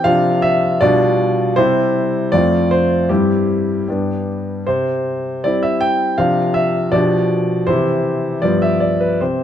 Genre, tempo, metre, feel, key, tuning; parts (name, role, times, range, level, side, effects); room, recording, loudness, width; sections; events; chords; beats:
classical-period piano sonatina; 79 BPM; 2/4; rubato; C major; A4 = 440 Hz
clear concert grand piano; solo; 0.0-9.4 s; F2 to G5; -14 LUFS; equal
moderate recital hall reverb, RT60 1.3 s; close, detailed microphones; -14 LUFS; side -10 dB against mid
0.0-9.4 A section
0.0 Dm7/C; 0.8 G7/B; 1.6 C; 2.3 F; 3.1 C/G; 3.9 G; 4.7 C; 6.2 Dm7/C; 6.9 G7/B; 7.7 C; 8.4 G7
| 0.05 0.81 | 1.56 2.32 | 3.09 3.87 | 4.66 5.43 | 6.18 6.93 | 7.67 8.43 | 9.21